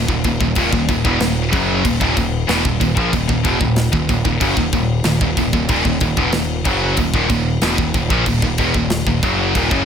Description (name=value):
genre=heavy metal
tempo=94 BPM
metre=4/4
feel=straight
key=Eb phrygian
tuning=A4 = 438 Hz
part: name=distorted electric guitar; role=riff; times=0.0-9.8 s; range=Eb2 to Gb3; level=-23 LUFS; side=left 1 dB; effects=overdrive
part: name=heavy high-gain guitar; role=riff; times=0.0-9.8 s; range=Eb2 to Gb3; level=-21 LUFS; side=left 11 dB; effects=distortion
part: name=scooped high-gain guitar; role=riff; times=0.0-9.8 s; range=Eb2 to Gb3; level=-21 LUFS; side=right 11 dB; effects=distortion
part: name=growling picked electric bass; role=bass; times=0.0-9.8 s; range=Eb1 to Bb1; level=-22 LUFS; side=equal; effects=overdrive
part: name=tight metal drum kit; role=drums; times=0.1-9.8 s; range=crash cymbal, kick drum, snare drum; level=-20 LUFS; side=equal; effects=none
room=light reverb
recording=none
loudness=-14 LUFS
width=side -8 dB against mid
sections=0.0-9.8 A section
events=none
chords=0.0 Ebm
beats=| 0.56 1.21 1.84 2.48 | 3.13 3.77 4.41 5.05 | 5.69 6.33 6.97 7.62 | 8.26 8.90 9.55